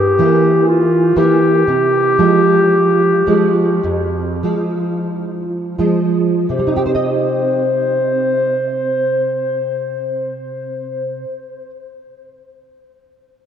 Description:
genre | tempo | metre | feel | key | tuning
romantic duo for clarinet and classical guitar | 40-64 BPM | 4/4 | rubato | C minor | A4 = 440 Hz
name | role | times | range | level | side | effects
mellow clarinet | melody | 0.0-11.2 s | F4 to C5 | -16 LUFS | left 1 dB | analog delay
nylon-string guitar | accompaniment | 0.0-11.7 s | F2 to Eb5 | -16 LUFS | right 2 dB | ensemble chorus
room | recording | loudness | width
wet huge ambient reverb, RT60 4.1 s | dreamy mix soaked in reverb | -13 LUFS | side -8 dB against mid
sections
0.0-6.5 A section; 6.5-12.0 B section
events
slowing down 0.0-6.5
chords
0.0 C7 (rootless); 1.7 Fm/C; 6.5 Cm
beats
0.66 | 1.66 2.70 3.82 5.07 | 6.49 7.87 9.25 10.61

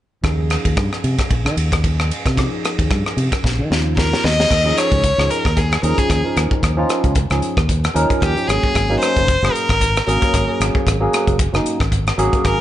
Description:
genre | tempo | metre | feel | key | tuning
electric jazz fusion | 113 BPM | 4/4 | swing 55% on 16ths | unclear | A4 = 440 Hz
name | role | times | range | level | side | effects
barky tine electric piano | accompaniment | 0.2-12.6 s | F3 to Bb4 | -22 LUFS | right 1 dB | overdrive, lush chorus
fingered electric bass | bass | 0.2-12.6 s | Gb1 to Eb3 | -19 LUFS | equal | none
crisp fusion drum kit | drums | 0.2-12.6 s | crash cymbal, hi-hat, kick drum, ride cymbal, rim click, snare drum | -19 LUFS | equal | none
clear violin | melody | 4.0-12.6 s | G4 to Eb5 | -19 LUFS | left 1 dB | none
room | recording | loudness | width
small room reverb | nothing above 10.5 kHz | -15 LUFS | side -13 dB against mid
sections
0.2-4.5 A section; 4.5-12.6 B section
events
drum fill 3.4-4.5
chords
0.2 Eb9sus4; 4.2 N.C.; 4.5 Eb9sus4; 8.5 Ab9sus4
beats
| 0.24 0.77 1.30 1.84 | 2.37 2.90 3.44 3.97 | 4.50 5.03 5.56 6.10 | 6.63 7.16 7.69 8.22 | 8.75 9.28 9.81 10.34 | 10.86 11.39 11.92 12.45

